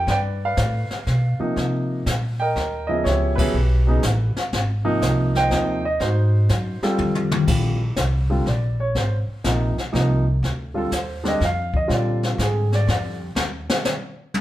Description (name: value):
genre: jazz piano trio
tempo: 122 BPM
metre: 3/4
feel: swing 67% on 8ths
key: Bb major from 7.5 s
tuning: A4 = 441 Hz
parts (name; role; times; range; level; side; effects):
- warm grand piano; melody; 0.0-13.3 s; C3 to G5; -23 LUFS; right 1 dB; none
- upright bass; bass; 0.0-13.7 s; Ab1 to C3; -22 LUFS; equal; none
- jazz brush drum kit; drums; 0.1-14.4 s; brushed snare drum, crash cymbal, hi-hat, kick drum, snare drum, toms; -25 LUFS; left 2 dB; none
room: moderate large studio reverb, RT60 0.9 s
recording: band playing live in one room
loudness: -19 LUFS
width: side -14 dB against mid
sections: 0.0-7.5 A section; 7.5-14.4 B section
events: band accent 3.3; drum fill 7.0-7.5; grand piano solo 7.5-14.4; drum solo 13.4-14.4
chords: 0.1 G7; 1.6 Cm7; 3.0 A9; 4.5 Abmaj7; 6.0 Ab7; 7.0 F; 7.5 Bb; 9.0 Ab; 10.4 N.C.; 11.9 Bb7; 13.4 N.C.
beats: | 0.07 0.57 1.06 | 1.56 2.06 2.55 | 3.04 3.54 4.03 | 4.52 5.02 5.51 | 6.00 6.49 6.99 | 7.48 7.97 8.46 | 8.95 9.44 9.93 | 10.42 10.91 11.40 | 11.89 12.38 12.87 | 13.36 13.85 14.34